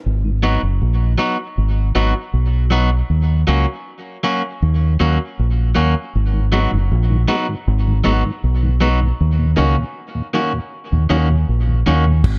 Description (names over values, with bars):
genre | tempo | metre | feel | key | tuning
dub reggae | 79 BPM | 4/4 | straight | G# minor | A4 = 440 Hz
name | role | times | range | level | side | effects
deep dub fingered electric bass | bass | 0.1-12.4 s | F#1 to D#2 | -18 LUFS | equal | none
mellow tonewheel organ | accompaniment | 0.2-0.3, 6.3-12.1 s | D#2 to F#4 | -27 LUFS | equal | overdrive, chorus vibrato, slow rotary speaker
electric guitar at the edge of break-up | accompaniment | 0.4-12.0 s | D#3 to F#4 | -23 LUFS | equal | tape echo
deep reggae drum kit | drums | 12.2-12.4 s | crash cymbal, kick drum | -19 LUFS | equal | none
room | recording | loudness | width
small room ambience | dark, warm production | -17 LUFS | mono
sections
0.0-12.2 A section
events
break 0.0-6.1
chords
0.0 G#m7; 3.1 D#m7; 6.1 G#m7; 9.2 D#m7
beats
| 0.05 0.81 1.57 2.33 | 3.09 3.86 4.62 5.38 | 6.14 6.91 7.67 8.43 | 9.19 9.96 10.72 11.48 | 12.24